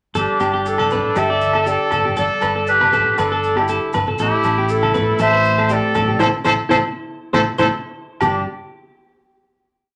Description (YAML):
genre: highlife guitar band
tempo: 119 BPM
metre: 4/4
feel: straight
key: G major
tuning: A4 = 437 Hz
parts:
  - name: picked steel-string acoustic guitar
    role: accompaniment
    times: 0.1-8.5 s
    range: A2 to B4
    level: -31 LUFS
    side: equal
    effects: none
  - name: fingered electric bass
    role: bass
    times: 0.1-8.4 s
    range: G1 to A1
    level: -28 LUFS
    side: equal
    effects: none
  - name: maracas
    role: percussion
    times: 0.1-8.4 s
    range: none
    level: -44 LUFS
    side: equal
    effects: none
  - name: clear clarinet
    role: melody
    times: 0.2-8.4 s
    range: G4 to E5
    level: -22 LUFS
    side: equal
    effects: none
  - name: bright trumpet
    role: second line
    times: 0.2-8.5 s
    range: D4 to C5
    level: -24 LUFS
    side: equal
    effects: none
  - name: clean electric guitar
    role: arpeggios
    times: 0.2-8.4 s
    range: E4 to D5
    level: -24 LUFS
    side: equal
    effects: spring reverb
  - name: agogo bells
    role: percussion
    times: 0.4-8.3 s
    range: none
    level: -25 LUFS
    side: equal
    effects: none
  - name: congas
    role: percussion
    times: 0.8-8.5 s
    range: none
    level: -32 LUFS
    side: equal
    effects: none
room: wet studio reverb, RT60 0.5 s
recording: none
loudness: -17 LUFS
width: mono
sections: 0.2-8.2 A section; 8.2-10.0 final chord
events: band accent 6.2-8.2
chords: 0.2 Gsus2; 4.2 Am; 8.2 G